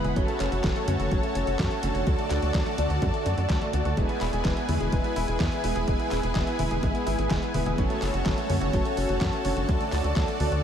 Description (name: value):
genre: italo disco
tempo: 126 BPM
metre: 4/4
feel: straight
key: unclear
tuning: A4 = 441 Hz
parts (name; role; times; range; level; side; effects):
- lush unison pad; sustained chords; 0.0-10.6 s; E4 to B5; -30 LUFS; equal; chorus
- direct-recorded clean electric guitar; arpeggios; 0.0-10.6 s; F#3 to G#4; -35 LUFS; left 2 dB; analog delay
- warm electric grand piano; stabs; 0.0-10.6 s; D3 to D5; -32 LUFS; right 2 dB; wide subtle chorus, analog delay
- tight sequencer bass; bass; 0.0-10.6 s; E1 to F#2; -28 LUFS; equal; none
- detuned 8-bit digital drum machine; drums; 0.0-10.6 s; congas, handclaps, hi-hat, snare drum; -33 LUFS; left 1 dB; none
- electronic kick drum; drums; 0.2-10.3 s; none; -28 LUFS; equal; overdrive
room: moderate huge ambient reverb, RT60 7.9 s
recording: dreamy mix soaked in reverb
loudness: -23 LUFS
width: side -8 dB against mid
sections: 0.0-10.6 A section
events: none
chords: 0.2 F#m; 2.1 D; 4.0 E; 7.8 F#m; 9.7 D